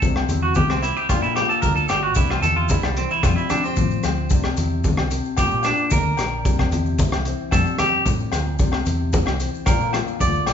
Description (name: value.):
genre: highlife guitar band.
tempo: 112 BPM.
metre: 4/4.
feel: straight.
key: C mixolydian.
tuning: A4 = 439 Hz.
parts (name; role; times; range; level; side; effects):
nylon-string guitar; accompaniment; 0.0-10.5 s; F2 to G4; -27 LUFS; left 6 dB; none.
fingered electric bass; bass; 0.0-10.5 s; G1 to F3; -25 LUFS; equal; none.
crunchy breakbeat drum kit; drums; 0.0-10.5 s; hi-hat, kick drum, rim click; -23 LUFS; equal; none.
congas; percussion; 0.0-10.3 s; none; -28 LUFS; left 1 dB; none.
maracas; percussion; 0.0-10.5 s; none; -36 LUFS; left 7 dB; none.
agogo bells; percussion; 0.2-10.5 s; none; -31 LUFS; left 7 dB; none.
clean electric guitar; arpeggios; 0.4-10.5 s; G3 to D5; -22 LUFS; right 2 dB; none.
room: wet large studio reverb, RT60 0.9 s.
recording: band playing live in one room, nothing above 7.5 kHz.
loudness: -18 LUFS.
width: side -8 dB against mid.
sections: 0.0-10.5 A section.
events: clean electric guitar solo 0.0-10.5.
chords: 0.0 C; 1.1 Bb; 2.2 C; 3.2 Fadd9; 4.3 C; 5.4 Bb; 6.5 C; 7.5 Fadd9; 8.6 C; 9.7 Bb.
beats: | 0.02 0.56 1.09 1.63 | 2.17 2.70 3.24 3.77 | 4.31 4.84 5.38 5.92 | 6.45 6.99 7.53 8.06 | 8.60 9.13 9.67 10.21.